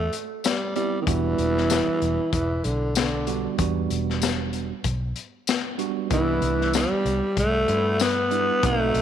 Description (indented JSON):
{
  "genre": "straight-eighth soul blues",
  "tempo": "95 BPM",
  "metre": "4/4",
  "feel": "swing 55% on 16ths",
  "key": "E minor",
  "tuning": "A4 = 440 Hz",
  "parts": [
    { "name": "growling tenor saxophone", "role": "melody", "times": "0.0-9.0 s", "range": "D3 to B3", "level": "-23 LUFS", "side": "equal", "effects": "none" },
    { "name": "vintage muted fingered electric bass", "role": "bass", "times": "0.0-9.0 s", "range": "E1 to G2", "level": "-27 LUFS", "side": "equal", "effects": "none" },
    { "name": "crunchy breakbeat drum kit", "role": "drums", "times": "0.1-9.0 s", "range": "hi-hat, kick drum, snare drum, tambourine", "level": "-27 LUFS", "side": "left 6 dB", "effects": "none" },
    { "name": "tine electric piano", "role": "accompaniment", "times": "0.8-9.0 s", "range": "G3 to F#4", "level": "-29 LUFS", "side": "right 13 dB", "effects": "overdrive, fast stereo tremolo" },
    { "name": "warm horn section", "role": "sustained chords", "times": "6.1-9.0 s", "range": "A3 to E4", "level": "-37 LUFS", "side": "equal", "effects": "none" }
  ],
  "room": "moderate plate reverb, RT60 2.2 s",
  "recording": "1960s-style stereo with parts hard left and right",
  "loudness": "-21 LUFS",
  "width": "side -9 dB against mid",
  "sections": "0.0-9.0 A section",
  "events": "none",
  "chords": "0.0 Am7 (rootless); 1.1 Em7; 6.1 Cmaj7"
}